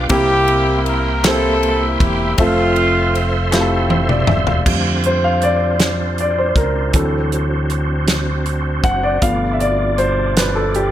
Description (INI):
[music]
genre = slow gospel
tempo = 53 BPM (dotted quarters)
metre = 6/8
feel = straight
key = F major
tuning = A4 = 441 Hz
[part]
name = warm horn section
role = melody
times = 0.0-3.5 s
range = A3 to Bb4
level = -17 LUFS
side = equal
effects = none
[part]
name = warm baby grand piano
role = accompaniment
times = 0.0-10.9 s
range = C3 to F#5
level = -19 LUFS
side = left 1 dB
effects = none
[part]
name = bright tonewheel organ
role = sustained chords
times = 0.0-10.9 s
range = B2 to C6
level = -23 LUFS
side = right 4 dB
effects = fast rotary speaker, chorus vibrato
[part]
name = fingered electric bass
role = bass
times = 0.0-10.9 s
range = E1 to F2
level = -20 LUFS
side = equal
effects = none
[part]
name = natural country drum kit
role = drums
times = 0.1-10.9 s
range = crash cymbal, hi-hat, kick drum, ride cymbal, snare drum, toms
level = -19 LUFS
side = equal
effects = none
[part]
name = group handclap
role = percussion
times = 1.2-3.9 s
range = none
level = -24 LUFS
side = left 3 dB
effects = none
[sound]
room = light reverb, small room ambience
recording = none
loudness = -14 LUFS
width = side -12 dB against mid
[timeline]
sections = 0.0-4.7 A section; 4.7-10.9 B section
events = drum fill 3.5-4.7; grand piano solo 4.7-10.9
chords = 0.1 C7; 2.4 Fmaj7; 4.7 F6; 6.9 D7; 9.2 G7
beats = | 0.11 1.25 | 2.38 3.52 | 4.66 5.80 | 6.94 8.08 | 9.22 10.36